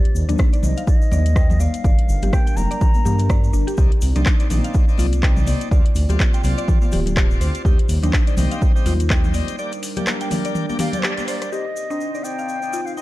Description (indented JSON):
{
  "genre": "afro house",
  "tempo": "124 BPM",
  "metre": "4/4",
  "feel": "swing 58% on 16ths",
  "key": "G minor",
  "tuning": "A4 = 440 Hz",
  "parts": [
    { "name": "mellow hollow silver concert flute", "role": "melody", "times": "0.0-3.5, 10.8-13.0 s", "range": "C5 to Bb5", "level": "-28 LUFS", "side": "left 1 dB", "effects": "tape echo" },
    { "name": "dark analog pad", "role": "sustained chords", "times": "0.0-13.0 s", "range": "G3 to D5", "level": "-32 LUFS", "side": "right 1 dB", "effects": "chorus, sidechain pumping" },
    { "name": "mallet-like synth pluck", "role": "arpeggios", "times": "0.0-13.0 s", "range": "D4 to G5", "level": "-30 LUFS", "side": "left 1 dB", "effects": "chorus, cassette tape, sidechain pumping, tape echo" },
    { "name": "dark detuned saw bass", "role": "bass", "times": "0.1-9.4 s", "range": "D1 to G2", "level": "-20 LUFS", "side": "equal", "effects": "sidechain pumping" },
    { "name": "afro-pop drum kit", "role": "drums", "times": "0.1-11.5 s", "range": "handclaps, hi-hat, rim click, toms", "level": "-26 LUFS", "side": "left 1 dB", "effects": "none" },
    { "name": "tube shaker", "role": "percussion", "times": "0.2-13.0 s", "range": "none", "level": "-38 LUFS", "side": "left 4 dB", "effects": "none" },
    { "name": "congas", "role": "percussion", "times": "0.3-11.3 s", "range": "none", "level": "-28 LUFS", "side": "left 2 dB", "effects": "none" },
    { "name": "electronic kick drum", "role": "drums", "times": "0.4-9.2 s", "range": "none", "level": "-17 LUFS", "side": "equal", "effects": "none" },
    { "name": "bright tonewheel organ", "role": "stabs", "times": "3.8-13.0 s", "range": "Bb3 to Eb5", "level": "-31 LUFS", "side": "left 1 dB", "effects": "overdrive, slow rotary speaker, vintage 12-bit sampler grit, sidechain pumping, low-pass filter, tape echo" }
  ],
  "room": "little or no reverb",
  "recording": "dark, warm production",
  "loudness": "-16 LUFS",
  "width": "side -17 dB against mid",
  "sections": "0.0-11.5 A section; 11.5-13.0 B section",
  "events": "break 9.6-11.5; band accent 11.0; filter sweep on synth pluck 11.5-13.0; filter sweep on tonewheel organ 11.5-13.0",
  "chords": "0.0 Eb6; 1.8 Gm; 3.8 Cmadd9; 5.7 Dm7; 7.7 Eb6; 9.6 Gm; 11.5 Cmadd9"
}